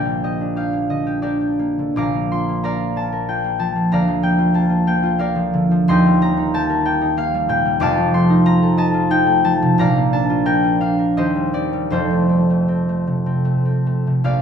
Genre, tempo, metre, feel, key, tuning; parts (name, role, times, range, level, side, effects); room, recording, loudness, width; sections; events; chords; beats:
classical, solo harp piece; 70-96 BPM; 3/4; rubato; A4 = 440 Hz
concert harp; solo; 0.0-14.4 s; Eb1 to D6; -15 LUFS; equal
moderate stone room reverb, RT60 1.0 s; minimal, uncompressed stereo recording; -15 LUFS; side -7 dB against mid
0.0-14.3 A section
0.0 Gm/Bb; 2.0 Bb; 3.9 Bb/D; 5.9 Cm7/Eb; 7.8 F7; 9.8 Bb; 11.2 Cm/Eb; 11.9 F
0.56 1.23 | 1.97 2.63 3.27 | 3.91 4.55 5.19 | 5.89 6.54 7.18 | 7.82 8.46 9.12 | 9.80 10.46 11.17 | 11.92 12.69 13.46 | 14.26